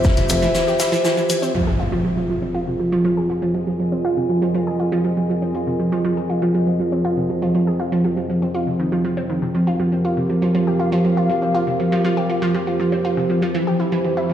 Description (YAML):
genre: melodic techno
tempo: 120 BPM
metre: 4/4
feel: straight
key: F minor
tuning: A4 = 440 Hz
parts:
  - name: dark analog pad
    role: sustained chords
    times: 0.0-14.3 s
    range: F3 to E5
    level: -23 LUFS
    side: left 2 dB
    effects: chorus, vintage 12-bit sampler grit, sidechain pumping
  - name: analog pluck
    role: arpeggios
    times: 0.0-14.3 s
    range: C3 to Ab4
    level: -20 LUFS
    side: right 1 dB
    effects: chorus, sidechain pumping, digital delay
  - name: shaker and snare drum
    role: drums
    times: 0.0-1.4 s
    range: none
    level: -28 LUFS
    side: left 1 dB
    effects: sidechain pumping on hats, high-pass filter on hats, studio reverb, high-pass filter on snare, sidechain pumping on perc, high-pass filter on perc, high-pass filter on room
  - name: egg shaker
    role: percussion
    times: 0.0-1.5 s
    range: none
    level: -31 LUFS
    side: left 5 dB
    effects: none
  - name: warbly tape-like pad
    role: texture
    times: 0.0-14.3 s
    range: F3 to Ab5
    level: -24 LUFS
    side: right 1 dB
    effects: chorus, built-in reverb, sidechain pumping
  - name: electronic hi-hat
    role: drums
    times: 0.2-1.4 s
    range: none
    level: -24 LUFS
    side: left 2 dB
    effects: low-pass filter on hats, studio reverb
  - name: plucky analog bass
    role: bass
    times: 0.3-0.5 s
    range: F1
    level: -22 LUFS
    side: equal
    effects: sidechain pumping
  - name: impact and riser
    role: sound effects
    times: 1.5-3.5, 14.1-14.3 s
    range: none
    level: -26 LUFS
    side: equal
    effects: none
room: moderate huge ambient reverb, RT60 6.8 s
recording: played on a big sound system in a bare room, stone room reverb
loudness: -17 LUFS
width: side -10 dB against mid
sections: 0.0-1.5 A section; 1.5-14.3 B section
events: impact 1.5-3.5; filter sweep on synth pluck 1.5-14.3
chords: 0.0 C/F; 1.5 Fm; 9.5 Eb6; 13.5 C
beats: 0.05 0.55 1.05 | 1.55 2.05 2.55 3.05 | 3.55 4.05 4.55 5.05 | 5.55 6.05 6.55 7.05 | 7.55 8.05 8.55 9.05 | 9.55 10.05 10.55 11.05 | 11.55 12.05 12.55 13.05 | 13.55 14.05